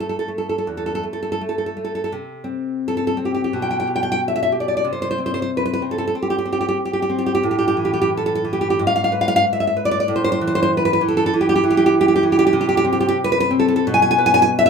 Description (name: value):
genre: romantic piece for solo classical guitar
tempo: 76-101 BPM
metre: 4/4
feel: rubato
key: unclear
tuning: A4 = 440 Hz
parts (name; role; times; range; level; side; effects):
- nylon-string guitar; solo; 0.0-14.7 s; E2 to G#5; -16 LUFS; equal; none
room: moderate studio reverb, RT60 0.8 s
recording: minimal, uncompressed stereo recording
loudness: -17 LUFS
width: side -6 dB against mid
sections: 0.0-2.1 A section; 2.1-14.7 B section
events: none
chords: 0.0 A5; 2.1 N.C.; 3.5 G/B; 4.8 N.C.; 7.4 A5; 8.8 G#dim7; 10.1 A5; 12.5 N.C.